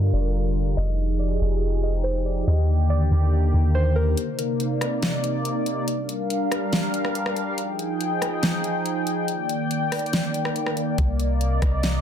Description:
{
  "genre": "hip hop, atmospheric cloud-rap",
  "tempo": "141 BPM",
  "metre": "4/4",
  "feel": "half-time",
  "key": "C minor",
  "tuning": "A4 = 440 Hz",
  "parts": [
    { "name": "warbly dusty pluck", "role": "melody", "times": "0.0-4.2 s", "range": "Bb4 to Eb5", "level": "-32 LUFS", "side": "equal", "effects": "chorus, ping-pong delay" },
    { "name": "sweeping resonant pad", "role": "sustained chords", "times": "0.0-12.0 s", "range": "C3 to G5", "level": "-25 LUFS", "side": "equal", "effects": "chorus, sidechain pumping" },
    { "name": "soft 808-style bass", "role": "bass", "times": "0.0-4.1, 11.0-12.0 s", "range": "F1 to G2", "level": "-21 LUFS", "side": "equal", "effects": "none" },
    { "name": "smooth R&B drum kit", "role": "drums", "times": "4.2-11.9 s", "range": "hi-hat, kick drum, rim click, snare drum", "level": "-26 LUFS", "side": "equal", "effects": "none" }
  ],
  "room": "digital ambience",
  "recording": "dense, heavily limited modern master, low-pass filter",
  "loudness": "-21 LUFS",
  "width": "side -9 dB against mid",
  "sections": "0.0-4.2 A section; 4.2-12.0 B section",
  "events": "filter sweep 0.0-4.2; break 4.2-11.0",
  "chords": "0.0 Gm7; 0.8 Fm9; 2.5 Ebmaj7; 4.2 Cm9; 5.9 Gm7; 7.6 Fm9; 9.3 Ebmaj7; 11.0 Cm9"
}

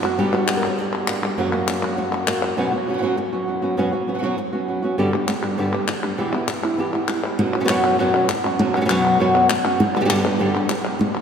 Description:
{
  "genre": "flamenco",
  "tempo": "200 BPM",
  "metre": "4/4",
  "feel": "straight",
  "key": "F# phrygian dominant",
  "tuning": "A4 = 440 Hz",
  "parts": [
    { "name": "flamenco guitar", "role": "melody", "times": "0.0-11.1 s", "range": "F#2 to D5", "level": "-20 LUFS", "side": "equal", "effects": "none" },
    { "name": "flamenco guitar", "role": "stabs", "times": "0.0-11.0 s", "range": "E2 to G4", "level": "-26 LUFS", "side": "right 3 dB", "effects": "none" },
    { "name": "palmas hand claps", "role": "percussion", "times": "0.0-2.6, 5.1-11.2 s", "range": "none", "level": "-26 LUFS", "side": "left 3 dB", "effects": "none" }
  ],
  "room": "wet cathedral reverb, RT60 5.2 s",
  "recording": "recorded in a church or concert hall",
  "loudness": "-18 LUFS",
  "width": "side -7 dB against mid",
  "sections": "0.0-2.6 A section; 2.6-7.4 B section; 7.4-11.2 B section",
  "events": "nylon-string guitar solo 0.0-2.6",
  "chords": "0.2 G; 1.4 F#; 2.6 F#sus4; 5.0 G; 6.2 Em; 7.4 F#sus4; 9.8 G"
}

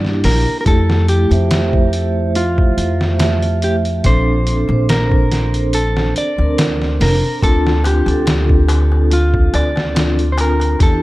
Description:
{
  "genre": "trip hop",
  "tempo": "71 BPM",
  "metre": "4/4",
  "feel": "swing 54% on 16ths",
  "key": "D minor",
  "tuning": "A4 = 440 Hz",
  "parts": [
    { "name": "mellow electric guitar", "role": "melody", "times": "0.0-11.0 s", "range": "F4 to D5", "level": "-21 LUFS", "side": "equal", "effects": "warbly pitch drift, tape echo" },
    { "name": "vibraphone with medium mallets", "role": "accompaniment", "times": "0.0-11.0 s", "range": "A3 to E5", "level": "-20 LUFS", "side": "right 1 dB", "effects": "tremolo" },
    { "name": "upright bass", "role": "bass", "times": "0.0-11.0 s", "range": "F1 to G2", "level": "-16 LUFS", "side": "equal", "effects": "tube saturation" },
    { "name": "trip hop sampler-style drum kit", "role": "drums", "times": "0.0-11.0 s", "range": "hi-hat, kick drum, snare drum", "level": "-17 LUFS", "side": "equal", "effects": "none" },
    { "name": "darbuka", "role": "percussion", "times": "7.4-11.0 s", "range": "none", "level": "-29 LUFS", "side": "left 4 dB", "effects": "none" }
  ],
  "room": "small room ambience",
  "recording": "none",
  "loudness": "-12 LUFS",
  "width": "side -18 dB against mid",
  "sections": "0.0-11.0 A section",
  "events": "none",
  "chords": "0.0 Em7b5; 0.7 Fmaj9; 4.0 Bbmaj9; 7.4 Dm7"
}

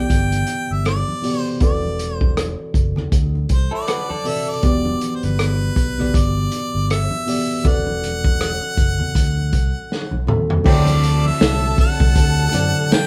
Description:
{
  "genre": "lush 1970s-style soul",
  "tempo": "80 BPM",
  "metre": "4/4",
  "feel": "swing 58% on 16ths",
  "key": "unclear",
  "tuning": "A4 = 441 Hz",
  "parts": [
    { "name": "bright harmonica", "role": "melody", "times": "0.0-13.1 s", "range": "B4 to G5", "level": "-27 LUFS", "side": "equal", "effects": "none" },
    { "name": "tine electric piano", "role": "accompaniment", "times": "0.0-13.1 s", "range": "D3 to E5", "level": "-26 LUFS", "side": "equal", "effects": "none" },
    { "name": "fingered electric bass", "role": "bass", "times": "0.0-12.9 s", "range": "E1 to F#2", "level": "-24 LUFS", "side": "equal", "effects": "none" },
    { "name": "vintage drum kit", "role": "drums", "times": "0.1-13.1 s", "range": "crash cymbal, hi-hat, kick drum, rim click, snare drum, toms", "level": "-21 LUFS", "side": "equal", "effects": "none" },
    { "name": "congas", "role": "percussion", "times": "0.3-13.1 s", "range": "none", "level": "-33 LUFS", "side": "equal", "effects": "none" },
    { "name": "electric guitar through a small old amp", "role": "riff", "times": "3.7-4.6 s", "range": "E4 to D5", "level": "-28 LUFS", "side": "equal", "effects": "phaser" },
    { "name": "warm studio violin section", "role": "second line", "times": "10.7-13.1 s", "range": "A4 to A5", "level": "-31 LUFS", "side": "equal", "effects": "none" },
    { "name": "mellow French horn section", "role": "sustained chords", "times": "10.7-13.1 s", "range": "C3 to A4", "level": "-34 LUFS", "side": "equal", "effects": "none" },
    { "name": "clear trombone section", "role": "stabs", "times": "10.7-10.9 s", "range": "A2 to C4", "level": "-27 LUFS", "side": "equal", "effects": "none" }
  ],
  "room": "light reverb",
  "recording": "band playing live in one room",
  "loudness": "-19 LUFS",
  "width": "mono",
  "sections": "0.0-10.7 A section; 10.7-13.1 B section",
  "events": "drum fill 9.9-10.7",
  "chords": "0.0 Em7; 1.6 D7/E; 4.6 Em7; 7.7 D7/E; 10.7 D7"
}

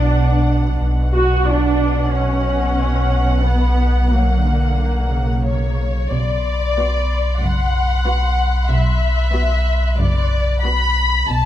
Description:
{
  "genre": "cinematic, suspense film score",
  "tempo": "92 BPM",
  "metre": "4/4",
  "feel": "uneven beats",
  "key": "B minor from 6.1 s",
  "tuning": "A4 = 440 Hz",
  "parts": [
    { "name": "muted studio violin section", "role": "melody", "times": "0.0-11.5 s", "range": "C#5 to B5", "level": "-22 LUFS", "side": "left 3 dB", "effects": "none" },
    { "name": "muted studio viola section", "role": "accompaniment", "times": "0.0-11.1 s", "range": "A#3 to F#4", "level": "-22 LUFS", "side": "right 1 dB", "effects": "none" },
    { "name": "muted studio cello section", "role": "bass", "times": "0.0-11.5 s", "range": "F#2 to F#3", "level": "-24 LUFS", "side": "right 2 dB", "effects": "none" },
    { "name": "muted studio double bass section", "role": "bass", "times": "0.0-11.5 s", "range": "F#1 to B1", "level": "-24 LUFS", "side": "right 2 dB", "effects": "none" },
    { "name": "pure sine sub bass", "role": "drone", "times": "0.0-11.5 s", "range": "B1", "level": "-18 LUFS", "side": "equal", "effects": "none" },
    { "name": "muted studio violin section", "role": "texture", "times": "0.0-0.5, 6.1-10.9 s", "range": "B5 to F#6", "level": "-32 LUFS", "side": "left 4 dB", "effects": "none" }
  ],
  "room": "moderate recital hall reverb, RT60 1.5 s",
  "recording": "close, detailed microphones",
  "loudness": "-15 LUFS",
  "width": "side -12 dB against mid",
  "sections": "0.0-6.1 A section; 6.1-11.5 B section",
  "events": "none",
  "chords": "0.0 Bm; 0.8 F#/B; 6.1 Bm"
}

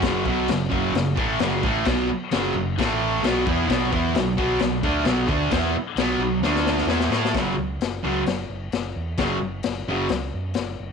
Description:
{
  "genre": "garage rock duo or trio",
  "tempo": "131 BPM",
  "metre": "4/4",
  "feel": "straight",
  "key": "unclear",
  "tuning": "A4 = 441 Hz",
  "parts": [
    { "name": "fuzz guitar", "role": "riff", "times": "0.0-10.1 s", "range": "F#2 to A4", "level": "-22 LUFS", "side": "right 1 dB", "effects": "distortion" },
    { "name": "overdriven fingered electric bass", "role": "bass", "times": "0.0-10.9 s", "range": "F#1 to A2", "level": "-30 LUFS", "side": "right 1 dB", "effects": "none" },
    { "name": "raw garage drum kit", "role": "drums", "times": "0.0-10.7 s", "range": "crash cymbal, kick drum, snare drum", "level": "-26 LUFS", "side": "left 5 dB", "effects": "none" }
  ],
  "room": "light reverb",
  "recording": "1960s-style stereo",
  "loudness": "-20 LUFS",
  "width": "side -6 dB against mid",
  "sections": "0.0-7.4 A section; 7.4-10.9 B section",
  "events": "drum fill 6.4-7.4",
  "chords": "0.0 F#5; 2.8 A5; 3.2 Bsus4; 3.7 B5; 6.4 D5; 6.9 Esus4; 7.4 F#5"
}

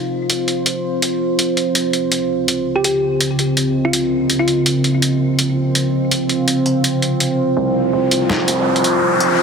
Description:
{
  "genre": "half-time drum and bass",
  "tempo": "165 BPM",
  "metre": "4/4",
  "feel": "swing 54% on 16ths, half-time",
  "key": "C phrygian",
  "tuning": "A4 = 440 Hz",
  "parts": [
    { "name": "deep dark ambient pad", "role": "sustained chords", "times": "0.0-9.4 s", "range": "Db3 to F5", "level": "-17 LUFS", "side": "right 1 dB", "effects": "chorus, built-in reverb, vintage 12-bit sampler grit" },
    { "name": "boom bap sampler-style drum kit", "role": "drums", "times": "0.3-9.3 s", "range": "hi-hat, snare drum", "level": "-19 LUFS", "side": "equal", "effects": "studio reverb" },
    { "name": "thumb-piano-like synth pluck", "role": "melody", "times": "2.8-4.7 s", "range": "F4 to G4", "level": "-22 LUFS", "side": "left 2 dB", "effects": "chorus, ping-pong delay" },
    { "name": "long sustained 808-style bass", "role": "bass", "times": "7.6-9.4 s", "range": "C2", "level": "-26 LUFS", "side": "equal", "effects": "high-pass filter" },
    { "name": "riser", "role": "sound effects", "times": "8.0-9.4 s", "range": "none", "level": "-19 LUFS", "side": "left 1 dB", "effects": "none" }
  ],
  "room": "light reverb",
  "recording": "heavily compressed radio sound, multiband compression",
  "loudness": "-14 LUFS",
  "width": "side -6 dB against mid",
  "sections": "0.0-7.6 A section; 7.6-9.4 B section",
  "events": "build-up 7.6-9.4; filter sweep 7.6-9.4; riser 8.0-9.4",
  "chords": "0.0 Cm; 1.8 Dbadd9; 7.6 Cm7"
}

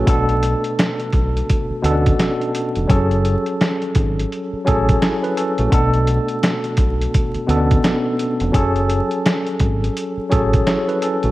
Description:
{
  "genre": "hip hop, boom-bap hip-hop",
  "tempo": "85 BPM",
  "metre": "4/4",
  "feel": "swing 62% on 16ths",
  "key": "F# minor",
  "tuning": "A4 = 440 Hz",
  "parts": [
    { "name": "tine electric piano", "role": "accompaniment", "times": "0.0-11.3 s", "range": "B2 to C#5", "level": "-19 LUFS", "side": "equal", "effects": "fast stereo tremolo, high-pass filter, low-pass filter" },
    { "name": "deep dub fingered electric bass", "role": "bass", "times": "0.0-11.3 s", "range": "E#1 to D2", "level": "-19 LUFS", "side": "equal", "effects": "none" },
    { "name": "boom bap sampler-style drum kit", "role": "drums", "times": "0.1-11.3 s", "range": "hi-hat, kick drum, snare drum", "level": "-19 LUFS", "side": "equal", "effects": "none" }
  ],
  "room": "light reverb",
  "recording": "worn, warbling old tape, cassette tape, vinyl crackle, warbly pitch drift",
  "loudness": "-16 LUFS",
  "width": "side -17 dB against mid",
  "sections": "0.0-11.3 A section",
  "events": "none",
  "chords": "0.1 Bm7; 2.9 F#madd9; 5.7 Bm7; 8.5 F#madd9"
}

